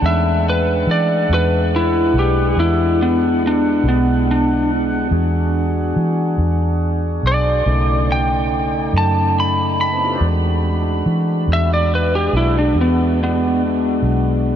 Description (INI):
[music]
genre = slow blues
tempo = 47 BPM (dotted quarters)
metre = 12/8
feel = straight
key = E mixolydian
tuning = A4 = 445 Hz
[part]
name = lightly driven lead guitar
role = melody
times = 0.0-13.6 s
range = B3 to B5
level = -18 LUFS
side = equal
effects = diffuse ambient delay
[part]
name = tonewheel organ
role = sustained chords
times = 0.0-14.6 s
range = C#3 to F#5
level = -22 LUFS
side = equal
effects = slow rotary speaker
[part]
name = vintage muted fingered electric bass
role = bass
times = 0.0-14.6 s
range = B1 to E3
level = -18 LUFS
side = equal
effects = none
[sound]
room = wet huge ambient reverb, RT60 7.8 s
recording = dreamy mix soaked in reverb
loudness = -14 LUFS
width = side -9 dB against mid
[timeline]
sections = 0.0-10.2 A section; 10.2-14.6 B section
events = lead electric guitar solo 10.2-14.6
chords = 0.0 E9; 7.7 B9; 10.2 E9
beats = | 0.02 1.29 2.57 3.84 | 5.12 6.39 7.66 8.94 | 10.21 11.48 12.75 14.03